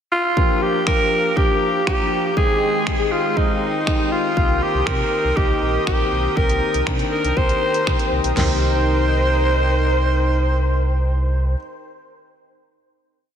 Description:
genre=dance-pop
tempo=120 BPM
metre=4/4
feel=straight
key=C minor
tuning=A4 = 439 Hz
part: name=raspy alto saxophone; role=melody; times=0.1-11.6 s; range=Eb4 to C5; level=-20 LUFS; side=equal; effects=analog delay
part: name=warm concert grand piano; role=accompaniment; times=0.4-11.6 s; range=Eb3 to G5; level=-25 LUFS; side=left 2 dB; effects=sidechain pumping
part: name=soft supersaw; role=sustained chords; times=0.4-11.6 s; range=Ab3 to Eb6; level=-27 LUFS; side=right 1 dB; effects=sidechain pumping
part: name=pop drum kit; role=drums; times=0.4-8.5 s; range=crash cymbal, finger snaps, hi-hat, kick drum, snare drum, toms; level=-22 LUFS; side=equal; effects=none
part: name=sub bass with octave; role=bass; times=4.4-11.6 s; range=Bb1 to C3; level=-20 LUFS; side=equal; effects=sidechain pumping
room=wet lush hall reverb, RT60 2.5 s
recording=dreamy mix soaked in reverb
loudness=-16 LUFS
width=side -8 dB against mid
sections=0.0-0.4 pickup bar; 0.4-8.4 verse; 8.4-12.4 final chord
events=none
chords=0.4 Gm7; 2.4 Abmaj7; 4.4 Cm7

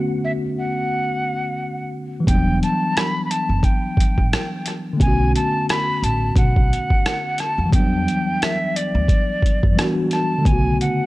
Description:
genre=lo-fi hip hop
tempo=88 BPM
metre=4/4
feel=swing 58% on 16ths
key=E minor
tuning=A4 = 440 Hz
part: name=mellow tine electric piano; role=accompaniment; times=0.0-11.1 s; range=C#3 to F#4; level=-22 LUFS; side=left 1 dB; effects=medium stereo tremolo, low-pass filter
part: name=breathy bright jazz flute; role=melody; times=0.2-11.1 s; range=D5 to B5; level=-24 LUFS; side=equal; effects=low-pass filter
part: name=upright bass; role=bass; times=2.3-10.8 s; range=E1 to F#2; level=-22 LUFS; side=equal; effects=none
part: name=boom bap sampler-style drum kit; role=drums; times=2.3-11.0 s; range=hi-hat, kick drum, rim click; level=-19 LUFS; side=equal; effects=none
room=light reverb, digital ambience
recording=cassette tape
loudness=-17 LUFS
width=side -18 dB against mid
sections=0.0-11.1 A section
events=none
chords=0.0 Bm9; 2.3 Em9; 5.0 Bm9; 7.7 Em9; 10.5 Bm9

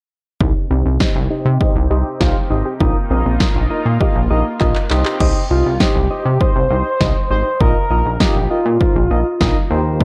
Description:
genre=synth-pop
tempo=100 BPM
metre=4/4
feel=straight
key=C minor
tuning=A4 = 440 Hz
part: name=soft electric-piano-like synth keys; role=accompaniment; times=0.4-10.0 s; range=Eb4 to F5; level=-25 LUFS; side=equal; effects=chorus, tremolo, low-pass filter
part: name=lush unison pad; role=sustained chords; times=0.4-5.2 s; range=C3 to G4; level=-29 LUFS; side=equal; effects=chorus, low-pass filter
part: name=soft round pluck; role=arpeggios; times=0.4-5.2 s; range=C4 to G4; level=-29 LUFS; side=equal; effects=none
part: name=chorused synth bass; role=bass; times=0.4-10.0 s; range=Ab1 to C3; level=-19 LUFS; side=equal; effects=none
part: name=punchy analog drum machine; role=drums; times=0.4-10.0 s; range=crash cymbal, handclaps, kick drum, snare drum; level=-19 LUFS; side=equal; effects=none
part: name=octave-doubled lead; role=melody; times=5.5-9.7 s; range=F4 to C5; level=-22 LUFS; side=equal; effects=chorus
room=light reverb, digital ambience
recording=dark, warm production, lossy compression artefacts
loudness=-16 LUFS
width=mono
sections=0.4-5.2 A section; 5.2-10.0 B section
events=filter sweep 0.4-5.2; drum fill 4.6-5.2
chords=0.4 Cm; 2.8 Bbsus4; 4.9 Cm; 7.6 Bbsus4

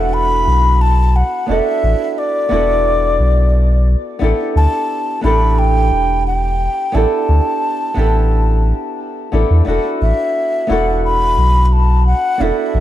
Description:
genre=sunset chillout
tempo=88 BPM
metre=4/4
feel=straight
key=E minor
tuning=A4 = 440 Hz
part: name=baroque flute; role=melody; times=0.0-12.8 s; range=D5 to B5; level=-18 LUFS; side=left 2 dB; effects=ping-pong delay
part: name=flamenco guitar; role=accompaniment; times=0.0-12.8 s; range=B3 to A4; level=-20 LUFS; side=moving between left 2 dB and right 8 dB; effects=auto-pan, tape echo
part: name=warm sub bass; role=bass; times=0.0-12.8 s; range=E1 to E2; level=-14 LUFS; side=equal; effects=none
room=light reverb, small room ambience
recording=dark, warm production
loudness=-12 LUFS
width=side -13 dB against mid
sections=0.0-12.8 A section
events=none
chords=0.0 E9sus4; 4.2 A9sus4; 9.7 E9sus4

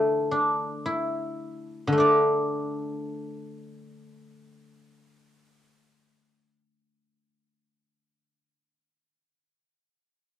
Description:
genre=chinese traditional, Chinese solo plucked strings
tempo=54 BPM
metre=4/4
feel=rubato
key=unclear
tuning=A4 = 440 Hz
part: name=guzheng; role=solo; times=0.0-8.5 s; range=D3 to E5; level=-24 LUFS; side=left 1 dB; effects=cassette tape
room=light reverb, small room ambience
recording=home recording on cassette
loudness=-23 LUFS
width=side -11 dB against mid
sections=0.0-2.0 A section; 2.0-6.4 B section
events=slowing down 0.0-2.0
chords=none

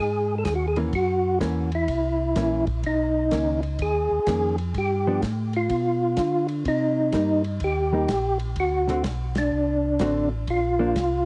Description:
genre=soul jazz organ trio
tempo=126 BPM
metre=4/4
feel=swing 66% on 8ths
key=unclear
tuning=A4 = 439 Hz
part: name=percussive tonewheel organ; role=melody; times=0.0-11.2 s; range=D4 to A4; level=-26 LUFS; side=equal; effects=chorus vibrato, fast rotary speaker, analog delay
part: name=mellow tonewheel organ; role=bass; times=0.0-11.3 s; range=A1 to D3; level=-30 LUFS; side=equal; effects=slow rotary speaker
part: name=warm soul drum kit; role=drums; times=0.4-11.1 s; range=hi-hat, kick drum, ride cymbal, snare drum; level=-36 LUFS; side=equal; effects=cassette tape
part: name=hollow-body jazz guitar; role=accompaniment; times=0.8-10.9 s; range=D3 to F#4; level=-29 LUFS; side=equal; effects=cassette tape
room=light reverb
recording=home recording on cassette, nothing above 10.8 kHz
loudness=-24 LUFS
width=mono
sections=0.0-11.3 A section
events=band accent 9.3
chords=0.0 Eb7sus4; 0.9 Gb7; 2.8 Bmaj9; 4.8 G7; 6.7 Cm7; 8.6 D7; 10.5 Bbadd9

